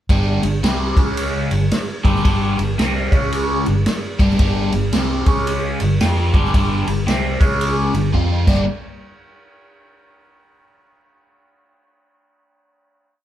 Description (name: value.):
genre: blues rock power trio and southern rock.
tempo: 112 BPM.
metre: 4/4.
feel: swing 62% on 8ths.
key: unclear.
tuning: A4 = 440 Hz.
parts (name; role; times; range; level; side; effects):
overdriven electric guitar; riff; 0.1-8.6 s; G2 to F4; -19 LUFS; equal; phaser.
vintage muted fingered electric bass; bass; 0.1-8.7 s; G1 to F2; -22 LUFS; equal; none.
vintage drum kit; drums; 0.1-8.6 s; crash cymbal, kick drum, ride cymbal, snare drum; -19 LUFS; equal; none.
room: moderate stone room reverb, RT60 1.0 s.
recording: band playing live in one room.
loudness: -15 LUFS.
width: side -12 dB against mid.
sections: 0.1-8.7 riff; 8.7-10.8 final hit.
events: drum fill 8.1-8.7.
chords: 0.1 G5; 0.9 C#5; 1.4 G5; 3.1 C#5; 3.6 G5; 5.2 C#5; 5.7 G5; 7.3 C#5; 7.9 G5; 8.4 Gm; 8.7 N.C..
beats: | 0.10 0.64 1.18 1.71 | 2.25 2.79 3.33 3.86 | 4.40 4.93 5.47 6.00 | 6.54 7.07 7.61 8.14.